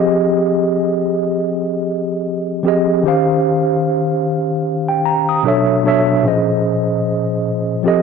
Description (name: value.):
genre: R&B.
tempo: 75 BPM.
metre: 4/4.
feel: swing 58% on 16ths.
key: Bb dorian.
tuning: A4 = 441 Hz.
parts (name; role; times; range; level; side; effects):
mellow tine electric piano; solo; 0.0-8.0 s; Bb2 to Eb6; -14 LUFS; equal; medium stereo tremolo.
room: light reverb.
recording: dry, gritty hardware recording, transformer saturation.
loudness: -14 LUFS.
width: side -5 dB against mid.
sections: 0.0-8.0 A section.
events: none.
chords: 0.0 Fm9; 3.0 Eb13; 5.4 Bm11; 6.2 Bbm11.